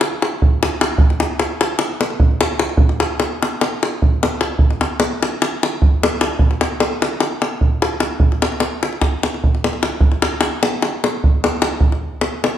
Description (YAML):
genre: balkan folk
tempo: 299 BPM (eighths)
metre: 9/8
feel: straight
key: none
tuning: none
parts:
  - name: davul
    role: percussion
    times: 0.0-12.5 s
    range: none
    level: -15 LUFS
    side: equal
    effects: none
room: wet large studio reverb, RT60 1.1 s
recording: band playing live in one room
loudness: -15 LUFS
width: side -10 dB against mid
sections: 0.0-10.0 A section; 10.0-12.6 A section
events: none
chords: none